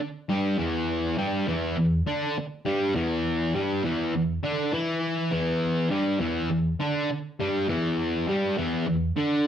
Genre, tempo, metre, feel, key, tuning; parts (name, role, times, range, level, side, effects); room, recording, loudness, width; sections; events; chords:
rock; 101 BPM; 4/4; straight; A4 = 440 Hz
distorted electric guitar; solo; 0.0-9.5 s; E2 to E4; -24 LUFS; equal; distortion, slapback echo
moderate studio reverb, RT60 0.7 s; band playing live in one room; -24 LUFS; side -9 dB against mid
0.0-9.5 A section
0.0 Em7